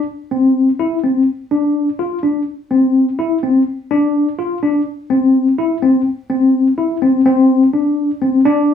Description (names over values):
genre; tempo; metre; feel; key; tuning
progressive instrumental, progressive; 251 BPM (eighths); 5/8; straight; unclear; A4 = 440 Hz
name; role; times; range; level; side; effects
tine electric piano; solo; 0.3-8.7 s; C4 to F4; -13 LUFS; left 2 dB; fast stereo tremolo
room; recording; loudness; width
wet small room reverb, RT60 0.5 s; band playing live in one room, small room ambience; -13 LUFS; side -8 dB against mid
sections
0.0-7.3 A section; 7.3-8.7 A section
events
none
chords
none